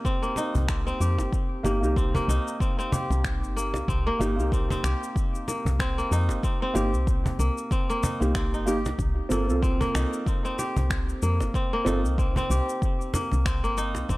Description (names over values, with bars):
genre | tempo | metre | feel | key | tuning
organic downtempo | 94 BPM | 4/4 | swing 57% on 16ths | C dorian | A4 = 437 Hz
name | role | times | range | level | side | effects
felt-muted upright piano | accompaniment | 0.0-12.0 s | Bb3 to A4 | -31 LUFS | right 1 dB | sidechain pumping, analog delay
kora | arpeggios | 0.0-14.2 s | Bb3 to G4 | -30 LUFS | left 1 dB | analog delay
electronic kick drum | drums | 0.0-14.2 s | none | -27 LUFS | equal | small room ambience
electronic shaker and finger snaps | drums | 0.1-14.2 s | none | -36 LUFS | left 2 dB | small room ambience
cajon | percussion | 0.4-14.1 s | none | -31 LUFS | right 1 dB | none
woody FM bass | bass | 0.6-14.2 s | G1 to F2 | -26 LUFS | equal | sidechain pumping
room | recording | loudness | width
small room ambience | dry, gritty hardware recording, transformer saturation | -23 LUFS | side -19 dB against mid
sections
0.0-14.2 A section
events
none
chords
0.0 Cm; 9.0 Bbsus2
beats
0.05 0.69 | 1.33 1.97 2.60 3.24 | 3.88 4.52 5.16 5.79 | 6.43 7.07 7.71 8.35 | 8.99 9.62 10.26 10.90 | 11.54 12.18 12.82 13.45 | 14.09